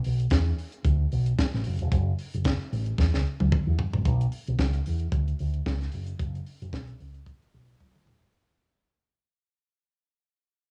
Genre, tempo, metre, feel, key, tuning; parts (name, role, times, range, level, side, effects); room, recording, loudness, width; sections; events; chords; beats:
disco; 112 BPM; 4/4; swing 56% on 16ths; F# minor; A4 = 438 Hz
tight funk drum kit; drums; 0.0-8.3 s; hi-hat, kick drum, snare drum, toms; -30 LUFS; equal; cassette tape
fingered electric bass with an envelope filter; bass; 0.1-8.3 s; E1 to E2; -28 LUFS; equal
little or no reverb; home recording on cassette, small room ambience; -27 LUFS; mono
0.0-4.1 A section; 4.1-8.3 B section
drum fill 3.0-4.1, 7.8-8.3; fade-out 4.1-8.3
0.32 0.85 1.38 | 1.92 2.45 2.99 3.52 | 4.05 4.59 5.12 5.66 | 6.19 6.73 7.26 7.80